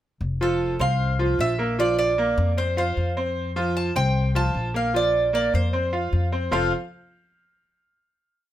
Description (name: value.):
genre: latin, Cuban son and guajira.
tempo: 152 BPM.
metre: 4/4.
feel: straight.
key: F major.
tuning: A4 = 440 Hz.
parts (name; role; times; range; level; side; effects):
upright bass; bass; 0.2-6.7 s; F1 to F2; -25 LUFS; left 1 dB; none.
Cuban tres; melody; 0.4-6.7 s; A4 to A5; -25 LUFS; right 2 dB; none.
bright concert grand piano; arpeggios; 0.4-6.7 s; F3 to F5; -25 LUFS; right 1 dB; none.
room: light reverb.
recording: none.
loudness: -20 LUFS.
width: side -12 dB against mid.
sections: 0.2-6.5 montuno (vamp); 6.5-8.1 final chord.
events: none.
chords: 0.2 F; 1.8 Bbadd9; 6.5 F5.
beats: | 0.21 0.61 1.00 1.39 | 1.79 2.18 2.58 2.97 | 3.37 3.76 4.16 4.55 | 4.95 5.34 5.74 6.13 | 6.53.